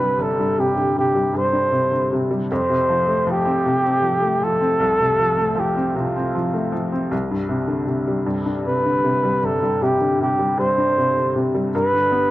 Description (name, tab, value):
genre	pop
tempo	52 BPM (dotted quarters)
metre	6/8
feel	straight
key	unclear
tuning	A4 = 440 Hz
part	mellow flugelhorn	melody	0.0-12.3 s	F4 to C5	-19 LUFS	right 1 dB	none
part	bright upright piano	accompaniment	0.0-12.3 s	G1 to D4	-21 LUFS	left 1 dB	none
room	light reverb, small room ambience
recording	dry, close 1970s-style studio recording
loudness	-17 LUFS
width	side -16 dB against mid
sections	0.0-12.3 A section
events	none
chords	0.0 Csus2; 2.5 F; 7.1 Csus2; 11.7 G